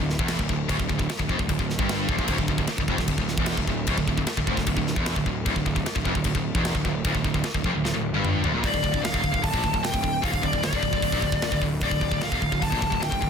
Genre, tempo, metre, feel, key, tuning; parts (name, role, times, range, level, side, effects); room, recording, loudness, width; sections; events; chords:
heavy metal; 151 BPM; 4/4; straight; D minor; A4 = 443 Hz
raw garage guitar; riff; 0.0-8.6 s; D2 to Bb2; -32 LUFS; right 1 dB; overdrive
scooped high-gain guitar; riff; 0.0-13.3 s; D2 to Bb2; -30 LUFS; left 14 dB; distortion
scooped high-gain guitar; riff; 0.0-13.3 s; D2 to Bb2; -30 LUFS; right 10 dB; distortion
fuzz picked electric bass; bass; 0.0-13.3 s; D1 to Bb1; -30 LUFS; equal; overdrive
tight metal drum kit; drums; 0.1-13.3 s; crash cymbal, hi-hat, kick drum, snare drum, toms; -27 LUFS; equal
high-gain lead guitar; melody; 8.7-13.3 s; D5 to A5; -27 LUFS; left 3 dB; distortion
studio reverb; dense, heavily limited modern master; -22 LUFS; side -7 dB against mid
0.0-8.6 A section; 8.6-13.3 B section
drum fill 7.8-8.6
0.0 Dm